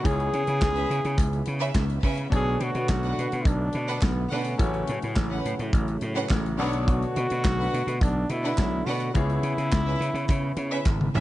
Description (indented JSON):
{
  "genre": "disco",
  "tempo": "106 BPM",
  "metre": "4/4",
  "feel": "straight",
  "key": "B dorian",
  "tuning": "A4 = 440 Hz",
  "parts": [
    { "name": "brilliant trombone", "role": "melody", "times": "0.0-11.1 s", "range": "B3 to G#4", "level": "-30 LUFS", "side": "equal", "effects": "none" },
    { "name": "clear grand piano", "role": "accompaniment", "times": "0.0-11.2 s", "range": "B2 to C#5", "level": "-34 LUFS", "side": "left 4 dB", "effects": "none" },
    { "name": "percussive tonewheel organ", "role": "sustained chords", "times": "0.0-11.2 s", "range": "C#3 to E4", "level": "-35 LUFS", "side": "right 1 dB", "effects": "overdrive, chorus vibrato, slow rotary speaker" },
    { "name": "gritty slap bass", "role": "bass", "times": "0.1-11.2 s", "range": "G#1 to C#3", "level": "-28 LUFS", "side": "equal", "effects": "overdrive" },
    { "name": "modern studio drum kit", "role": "drums", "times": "0.1-11.2 s", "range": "handclaps, hi-hat, kick drum, snare drum, toms", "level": "-27 LUFS", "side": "equal", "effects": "none" },
    { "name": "group handclap", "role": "percussion", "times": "0.6-11.0 s", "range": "none", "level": "-41 LUFS", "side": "right 3 dB", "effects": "none" },
    { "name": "warm studio violin section", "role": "second line", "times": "0.8-11.2 s", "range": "C#4 to F#5", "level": "-33 LUFS", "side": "right 2 dB", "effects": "slapback echo" }
  ],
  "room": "small room ambience",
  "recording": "dark, warm production, nothing above 10.5 kHz",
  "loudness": "-23 LUFS",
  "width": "side -15 dB against mid",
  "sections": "0.0-11.2 A section",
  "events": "drum fill 10.8-11.2",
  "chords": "0.1 C#m7; 2.3 Bm7; 4.6 A69; 6.6 Bm7; 9.1 C#m7"
}